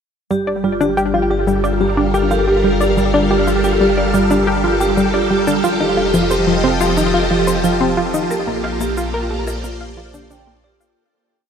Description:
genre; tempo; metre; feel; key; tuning
ambient, sequencer-driven space music; 90 BPM; 4/4; straight; G minor; A4 = 441 Hz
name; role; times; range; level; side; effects
phased string machine; sustained chords; 0.3-11.0 s; F3 to F5; -18 LUFS; equal; ensemble chorus, phaser, shimmer reverb
vibraphone with hard mallets; arpeggios; 0.3-10.9 s; F4 to G5; -22 LUFS; right 2 dB; auto-pan, tape echo, shimmer reverb
analog pluck; riff; 0.3-10.9 s; F3 to F5; -18 LUFS; equal; chorus, tape echo, shimmer reverb
warm sub bass; bass; 0.3-10.9 s; F1 to Bb1; -24 LUFS; equal; none
cabasa and percussion blips; percussion; 0.3-10.9 s; none; -34 LUFS; left 4 dB; overdrive, tape echo
room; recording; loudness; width
wet huge ambient reverb, RT60 7.1 s; none; -14 LUFS; side -7 dB against mid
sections
0.3-11.0 A section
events
fade-in on drum 0.3-11.0; fade-out 7.4-11.0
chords
0.3 Gm7; 5.6 F7; 8.3 Bbmaj7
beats
| 0.31 0.97 1.64 2.31 | 2.98 3.64 4.31 4.97 | 5.64 6.31 6.97 7.64 | 8.31 8.97 9.64 10.31

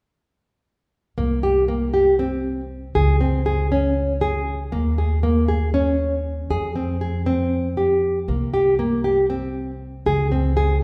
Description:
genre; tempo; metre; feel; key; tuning
contemporary instrumental, chamber music in an uneven meter; 236 BPM (eighths); 7/8; straight; unclear; A4 = 440 Hz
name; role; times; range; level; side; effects
nylon-string guitar; arpeggios; 1.2-10.8 s; Bb3 to Ab4; -23 LUFS; equal; none
upright bass; bass; 1.2-10.8 s; C2 to F2; -25 LUFS; equal; none
room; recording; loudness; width
wet recital hall reverb, RT60 1.6 s; heard from further back in the room; -21 LUFS; mono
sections
1.2-10.8 A section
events
none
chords
1.2 C5; 3.0 Db5; 4.7 Eb7sus4; 6.5 Fmadd9; 8.3 C5; 10.1 Db5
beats
| 1.18 1.44 1.69 1.94 2.19 2.45 2.70 | 2.95 3.21 3.46 3.71 3.97 4.22 4.47 | 4.73 4.98 5.24 5.49 5.74 6.00 6.25 | 6.50 6.76 7.01 7.26 7.52 7.77 8.03 | 8.28 8.53 8.79 9.04 9.30 9.55 9.80 | 10.06 10.31 10.57 10.82

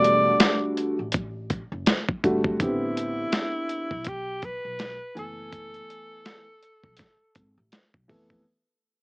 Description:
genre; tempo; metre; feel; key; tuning
hip hop, jazz-hop; 82 BPM; 4/4; swing 58% on 16ths; F# phrygian; A4 = 440 Hz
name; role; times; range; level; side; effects
breathy alto saxophone; melody; 0.0-7.7 s; E4 to D5; -26 LUFS; equal; plate reverb
dark upright piano; accompaniment; 0.0-8.4 s; D3 to G#5; -26 LUFS; equal; none
upright bass; bass; 0.0-8.4 s; E1 to B1; -35 LUFS; equal; none
dusty soul sampler-style drum kit; drums; 0.0-8.4 s; hi-hat, kick drum, snare drum; -23 LUFS; equal; overdrive
room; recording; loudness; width
moderate booth ambience, RT60 0.2 s; cassette tape, small speaker sound; -23 LUFS; side -36 dB against mid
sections
0.0-8.5 A section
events
fade-out 0.0-8.5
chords
0.0 Em11 (rootless); 2.6 Am11; 5.2 F#m11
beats
0.41 1.14 1.87 | 2.60 3.33 4.06 4.80 | 5.53 6.26 6.99 7.72

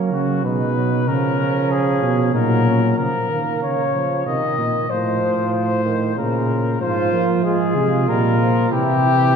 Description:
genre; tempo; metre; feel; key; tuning
classical, imitative canzona for brass ensemble; 94 BPM; 3/4; straight; Bb minor; A4 = 440 Hz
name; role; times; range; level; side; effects
mellow flugelhorn; second line; 0.0-2.8, 6.8-9.3 s; C#4 to F4; -24 LUFS; right 6 dB; none
warm trombone; accompaniment; 0.0-9.4 s; Db3 to Bb3; -24 LUFS; right 2 dB; none
mellow tuba; bass; 0.0-9.4 s; Ab2 to F#3; -20 LUFS; right 1 dB; none
mellow trumpet; melody; 0.1-9.4 s; F#4 to Eb5; -22 LUFS; left 4 dB; none
room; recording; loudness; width
wet church reverb, RT60 3.2 s; recorded in a church or concert hall; -16 LUFS; side -6 dB against mid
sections
0.0-3.0 A section; 3.0-9.4 B section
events
none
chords
0.4 G#m/B; 1.1 C#; 2.3 F#/A#; 3.0 Bbm/Db; 4.3 Bbsus24; 4.9 F/A; 6.2 Bbm; 6.8 Fm/Ab; 8.1 Gm7/Bb; 8.7 C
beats
0.44 | 1.07 1.70 2.34 | 2.98 3.62 4.26 | 4.90 5.54 6.17 | 6.81 7.45 8.09 | 8.72 9.35

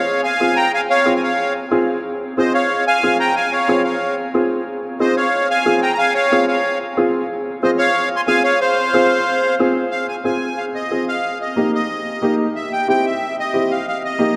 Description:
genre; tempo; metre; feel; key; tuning
latin; 183 BPM; 4/4; straight; F minor; A4 = 440 Hz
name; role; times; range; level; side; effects
accordion; melody; 0.0-14.3 s; C5 to C6; -20 LUFS; equal; light tremolo tuning
warm upright piano; accompaniment; 0.4-14.4 s; Bb3 to Ab4; -22 LUFS; equal; none
room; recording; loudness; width
wet cathedral reverb, RT60 6.3 s; in a vast, echoing space; -18 LUFS; mono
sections
0.0-9.9 A section; 9.9-14.4 B section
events
none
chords
0.0 Fm; 11.2 Eb; 12.6 C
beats
0.07 0.40 | 0.72 1.05 1.38 1.71 | 2.04 2.37 2.70 3.03 | 3.36 3.69 4.01 4.34 | 4.67 5.00 5.33 5.65 | 5.98 6.31 6.64 6.97 | 7.29 7.62 7.95 8.28 | 8.61 8.94 9.26 9.59 | 9.92 10.25 10.58 10.91 | 11.23 11.56 11.89 12.22 | 12.55 12.88 13.21 13.54 | 13.87 14.20

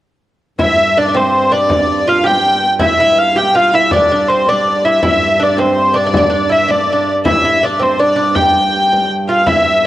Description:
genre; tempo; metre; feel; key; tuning
medieval dance; 108 BPM (dotted quarters); 6/8; straight; unclear; A4 = 439 Hz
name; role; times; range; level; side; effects
dark hurdy-gurdy; melody; 0.6-9.9 s; C5 to G5; -12 LUFS; equal; none
lute; second line; 0.6-9.9 s; C4 to G4; -18 LUFS; right 2 dB; none
hand-pumped harmonium; drone; 0.6-9.9 s; G2; -23 LUFS; right 1 dB; stereo widening
frame drum; percussion; 0.6-9.9 s; none; -20 LUFS; left 2 dB; none
room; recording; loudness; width
moderate lush hall reverb, RT60 2.5 s; home recording on cassette; -10 LUFS; side -14 dB against mid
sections
0.6-9.5 A section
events
none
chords
none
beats
| 0.58 1.14 | 1.70 2.25 | 2.81 3.36 | 3.92 4.47 | 5.03 5.58 | 6.14 6.70 | 7.25 7.80 | 8.36 8.91 | 9.47

